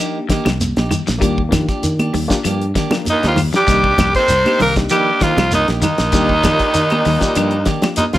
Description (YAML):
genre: afrobeat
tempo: 98 BPM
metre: 4/4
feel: straight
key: unclear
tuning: A4 = 440 Hz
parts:
  - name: reed electric piano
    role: accompaniment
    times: 0.0-8.2 s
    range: Bb3 to D5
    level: -25 LUFS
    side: left 3 dB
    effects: fast tremolo
  - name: semi-hollow electric guitar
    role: arpeggios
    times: 0.0-8.0 s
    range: Eb3 to G3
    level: -24 LUFS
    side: left 7 dB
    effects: spring reverb
  - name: clean electric guitar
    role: stabs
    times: 0.0-8.2 s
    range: Eb3 to G4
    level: -26 LUFS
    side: right 4 dB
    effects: none
  - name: fingered electric bass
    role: bass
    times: 0.3-8.2 s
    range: Bb1 to Eb3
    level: -20 LUFS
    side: equal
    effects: none
  - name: damped 70s drum kit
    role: drums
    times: 0.3-8.2 s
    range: hi-hat, kick drum, snare drum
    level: -20 LUFS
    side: equal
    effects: none
  - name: shekere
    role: percussion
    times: 0.3-8.1 s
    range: none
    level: -26 LUFS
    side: right 1 dB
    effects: none
  - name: claves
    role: percussion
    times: 0.5-8.0 s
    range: none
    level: -28 LUFS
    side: left 2 dB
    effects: none
  - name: congas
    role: percussion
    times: 0.5-8.2 s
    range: none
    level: -22 LUFS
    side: right 2 dB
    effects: none
  - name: raspy alto saxophone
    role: melody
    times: 3.1-8.2 s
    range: Eb4 to C5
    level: -16 LUFS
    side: right 1 dB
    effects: none
  - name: growling tenor saxophone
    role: second line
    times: 3.1-8.2 s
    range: Eb3 to C4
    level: -25 LUFS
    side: right 4 dB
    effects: slapback echo
  - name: raspy baritone saxophone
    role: second line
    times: 3.1-8.2 s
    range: Eb2 to C3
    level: -24 LUFS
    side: left 2 dB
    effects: none
room: light reverb, small room ambience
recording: none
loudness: -13 LUFS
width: side -14 dB against mid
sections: 0.0-8.2 A section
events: none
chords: 0.0 Cm7; 1.2 Ebmaj7; 3.7 Cm7; 6.1 Ebmaj7